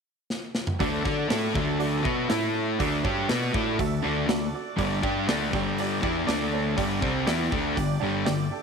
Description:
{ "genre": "classic rock", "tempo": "121 BPM", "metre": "4/4", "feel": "straight", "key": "D major", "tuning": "A4 = 440 Hz", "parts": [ { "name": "big rock drum kit", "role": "drums", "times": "0.3-8.4 s", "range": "hi-hat, kick drum, snare drum, toms", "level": "-30 LUFS", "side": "equal", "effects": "none" }, { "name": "honky-tonk upright piano", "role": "accompaniment", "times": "0.8-8.6 s", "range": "D4 to A5", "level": "-33 LUFS", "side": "right 13 dB", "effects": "none" }, { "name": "overdriven tonewheel organ", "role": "sustained chords", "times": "0.8-8.6 s", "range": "F#3 to D5", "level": "-40 LUFS", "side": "equal", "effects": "none" }, { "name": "overdriven semi-hollow guitar", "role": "riff", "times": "0.8-8.5 s", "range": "G2 to D5", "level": "-30 LUFS", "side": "right 13 dB", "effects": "none" }, { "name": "sludgy distorted guitar", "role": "riff", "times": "0.8-8.5 s", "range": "G2 to D5", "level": "-28 LUFS", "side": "left 11 dB", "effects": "overdrive" }, { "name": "growling fingered electric bass", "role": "bass", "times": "0.8-8.5 s", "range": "G1 to D3", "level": "-33 LUFS", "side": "equal", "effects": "overdrive" } ], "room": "studio reverb", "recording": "1960s-style stereo with parts hard left and right", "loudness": "-24 LUFS", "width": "side -5 dB against mid", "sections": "0.8-8.6 A section", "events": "drum fill 0.3-0.8; honky-tonk piano fill 7.8-8.6", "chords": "0.0 N.C.; 0.8 D; 2.3 A5; 2.8 D; 4.8 G5; 6.3 D5; 6.8 G5" }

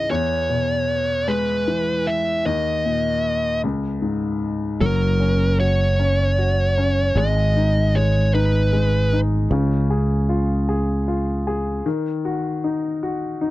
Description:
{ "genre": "six-eight pop ballad", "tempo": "51 BPM (dotted quarters)", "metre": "6/8", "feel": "straight", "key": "unclear", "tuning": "A4 = 440 Hz", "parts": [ { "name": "fuzz lead guitar", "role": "melody", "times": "0.0-9.2 s", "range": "A#4 to E5", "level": "-22 LUFS", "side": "right 1 dB", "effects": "distortion" }, { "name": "clear baby grand piano", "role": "accompaniment", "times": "0.0-13.5 s", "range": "C#2 to G#4", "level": "-23 LUFS", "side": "left 3 dB", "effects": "none" }, { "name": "sustaining fretless electric bass", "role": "bass", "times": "4.8-11.8 s", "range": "F#1 to C#2", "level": "-19 LUFS", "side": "right 1 dB", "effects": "none" } ], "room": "little or no reverb", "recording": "dry, close 1970s-style studio recording, tape saturation", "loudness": "-18 LUFS", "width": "side -16 dB against mid", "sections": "0.0-4.8 A section; 4.8-13.5 B section", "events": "break 11.9-13.5", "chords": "0.1 E; 2.5 D#5; 3.6 C#5; 4.8 F#; 7.2 G#m; 9.5 C#; 11.9 D#m" }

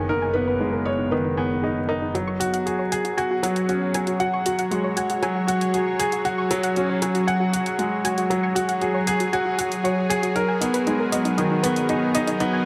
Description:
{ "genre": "piano and strings electronica", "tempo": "117 BPM", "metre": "4/4", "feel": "straight", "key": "F# major", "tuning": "A4 = 440 Hz", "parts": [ { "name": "felt-muted upright piano", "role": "melody", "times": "0.0-1.8 s", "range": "B4 to C#5", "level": "-31 LUFS", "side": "equal", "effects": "delay" }, { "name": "lush unison pad", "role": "sustained chords", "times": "0.0-12.7 s", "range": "F#3 to C#5", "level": "-30 LUFS", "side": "equal", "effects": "chorus" }, { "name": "soft round pluck", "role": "arpeggios", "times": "0.0-12.7 s", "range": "D#4 to C#6", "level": "-31 LUFS", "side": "equal", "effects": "chorus, delay" }, { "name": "clear grand piano", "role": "riff", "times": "0.0-12.7 s", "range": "D#3 to F#5", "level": "-25 LUFS", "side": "equal", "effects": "delay" }, { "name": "clear chamber double bass section", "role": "bass", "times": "0.0-2.1 s", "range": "F#1", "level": "-33 LUFS", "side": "equal", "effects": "none" }, { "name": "electronic hi-hat", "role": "drums", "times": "2.2-12.5 s", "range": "none", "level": "-34 LUFS", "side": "equal", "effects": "overdrive" } ], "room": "moderate huge ambient reverb, RT60 6.5 s", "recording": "none", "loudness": "-23 LUFS", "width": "mono", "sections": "0.0-2.1 A section; 2.1-12.7 B section", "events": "build-up 2.1-12.7", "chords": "0.0 G#madd9/F#; 2.1 F#sus2; 10.4 G#madd9" }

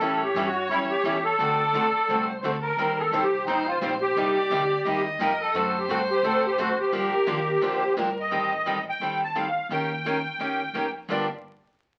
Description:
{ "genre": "acoustic string swing (jazz manouche)", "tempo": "174 BPM", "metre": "4/4", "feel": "swing 60% on 8ths", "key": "G minor", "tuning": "A4 = 441 Hz", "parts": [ { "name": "musette accordion", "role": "melody", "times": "0.0-11.3 s", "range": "Eb4 to A5", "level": "-27 LUFS", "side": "equal", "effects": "none" }, { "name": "warm violin", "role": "second line", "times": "0.0-8.3 s", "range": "A4 to Eb5", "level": "-33 LUFS", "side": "equal", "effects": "none" }, { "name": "picked steel-string acoustic guitar", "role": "accompaniment", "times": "0.0-11.3 s", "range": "G2 to C5", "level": "-31 LUFS", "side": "equal", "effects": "none" }, { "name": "picked steel-string acoustic guitar", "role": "accompaniment", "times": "0.0-11.3 s", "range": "G2 to C5", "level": "-40 LUFS", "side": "equal", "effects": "none" }, { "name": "upright bass", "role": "bass", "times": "0.0-11.3 s", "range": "G1 to A2", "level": "-40 LUFS", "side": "equal", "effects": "none" } ], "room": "wet studio reverb, RT60 0.6 s", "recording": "very old 78 rpm record, vinyl crackle", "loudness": "-25 LUFS", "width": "mono", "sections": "0.0-8.3 A section; 8.3-11.1 B section", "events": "none", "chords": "0.0 A7; 1.4 D7; 2.8 Eb6; 4.2 Cm9; 5.5 D7; 6.9 Gm7; 8.3 Am7b5; 9.7 Eb7; 11.1 Gm7" }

